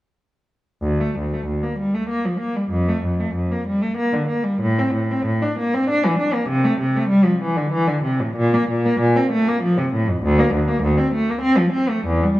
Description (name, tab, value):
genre	classical, baroque-style suite movement for unaccompanied cello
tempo	96 BPM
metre	3/4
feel	uneven beats, rubato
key	D minor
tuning	A4 = 445 Hz
part	warm cello	solo	0.8-12.4 s	D2 to D4	-17 LUFS	equal	none
room	wet recital hall reverb, RT60 1.6 s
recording	dark, warm production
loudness	-17 LUFS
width	side -16 dB against mid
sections	0.8-12.4 A section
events	none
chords	none